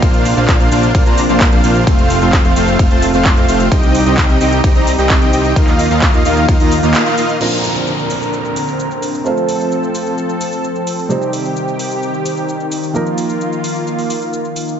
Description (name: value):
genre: EDM, festival progressive house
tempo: 130 BPM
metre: 4/4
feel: straight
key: Bb major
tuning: A4 = 440 Hz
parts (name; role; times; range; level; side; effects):
- lush unison pad; sustained chords; 0.0-14.8 s; C3 to Bb4; -19 LUFS; equal; chorus, sidechain pumping
- dense compressed supersaw; riff; 0.0-7.4 s; A3 to Bb5; -15 LUFS; equal; cassette tape, sidechain pumping, low-pass filter, tape echo
- fat analog bass; bass; 0.0-6.9 s; F1 to F2; -17 LUFS; equal; sidechain pumping
- big-room dance drum kit; drums; 0.0-14.8 s; cabasa, crash cymbal, handclaps, hi-hat, ride cymbal; -22 LUFS; right 1 dB; studio reverb
- electronic kick drum; drums; 0.0-6.6 s; none; -12 LUFS; equal; high-pass filter on kick, studio reverb
- felt-muted upright piano; accompaniment; 7.4-14.8 s; Bb2 to C5; -21 LUFS; right 3 dB; sidechain pumping, tape echo
- downlifter; sound effects; 7.4-11.1 s; none; -25 LUFS; left 1 dB; none
room: light reverb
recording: nothing above 7.7 kHz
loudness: -12 LUFS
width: side -8 dB against mid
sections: 0.0-7.4 A section; 7.4-14.8 B section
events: drop 0.0-7.4; band accent 6.9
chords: 0.0 Bbadd9; 1.9 F; 3.7 Cm; 5.6 Ebsus2; 7.4 Bbadd9; 9.3 F; 11.1 Cm; 12.9 Ebsus2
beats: | 0.02 0.49 0.95 1.41 | 1.87 2.33 2.79 3.25 | 3.72 4.18 4.64 5.10 | 5.56 6.02 6.49 6.95 | 7.41 7.87 8.33 8.79 | 9.26 9.72 10.18 10.64 | 11.10 11.56 12.02 12.49 | 12.95 13.41 13.87 14.33